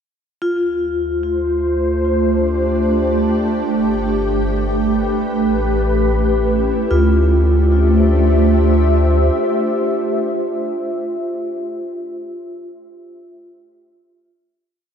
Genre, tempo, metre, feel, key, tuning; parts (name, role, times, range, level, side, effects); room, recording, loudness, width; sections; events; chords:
ambient; free time; D dorian; A4 = 440 Hz
vibraphone with medium mallets; arpeggios; 0.4-12.7 s; F4; -21 LUFS; left 1 dB; ping-pong delay
warm sub bass; bass; 0.4-9.3 s; G1 to D2; -18 LUFS; equal
ethereal airy pad; sustained chords; 1.3-10.8 s; A3 to E5; -18 LUFS; equal; ensemble chorus, built-in reverb
wet lush hall reverb, RT60 2.7 s; -14 LUFS; side -8 dB against mid
0.4-6.9 A section; 6.9-10.1 final chord
fade-in on sub bass 0.4-6.9
0.4 Dm7; 3.7 G; 5.3 A7; 6.9 Dm7